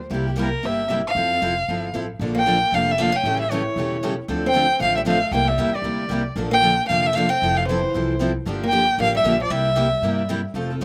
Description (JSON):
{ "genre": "acoustic string swing (jazz manouche)", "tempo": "230 BPM", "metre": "4/4", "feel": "swing 58% on 8ths", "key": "unclear", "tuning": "A4 = 440 Hz", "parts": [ { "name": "upright bass", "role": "bass", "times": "0.0-10.8 s", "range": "E1 to G2", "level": "-30 LUFS", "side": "equal", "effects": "none" }, { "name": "picked steel-string acoustic guitar", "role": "accompaniment", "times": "0.1-10.8 s", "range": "C3 to A4", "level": "-30 LUFS", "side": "equal", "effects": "none" }, { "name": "picked steel-string acoustic guitar", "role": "accompaniment", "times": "0.1-10.8 s", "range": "C3 to A4", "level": "-30 LUFS", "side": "equal", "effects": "none" }, { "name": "warm violin", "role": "melody", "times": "0.4-10.3 s", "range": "Bb4 to G5", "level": "-23 LUFS", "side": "equal", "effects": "none" }, { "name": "picked old ladder-braced acoustic guitar", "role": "second line", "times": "2.3-10.3 s", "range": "E3 to Db4", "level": "-31 LUFS", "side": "equal", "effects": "none" } ], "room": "little or no reverb", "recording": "recorded outdoors, with no room sound", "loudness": "-21 LUFS", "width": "mono", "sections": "0.0-2.2 A section; 2.2-10.5 B section", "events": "none", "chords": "0.1 C7; 1.2 Fmaj7; 2.2 Bbmaj7; 3.2 A7; 4.3 Dm7; 5.3 C9; 6.4 Bbmaj7; 7.4 Fmaj7; 8.5 Gm7; 9.5 C7", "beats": "| 0.11 0.38 0.64 0.90 | 1.16 1.42 1.68 1.94 | 2.20 2.46 2.72 2.98 | 3.25 3.51 3.77 4.03 | 4.29 4.55 4.81 5.07 | 5.33 5.59 5.85 6.11 | 6.38 6.64 6.90 7.16 | 7.42 7.68 7.94 8.20 | 8.46 8.72 8.98 9.24 | 9.51 9.77 10.03 10.29 | 10.55 10.81" }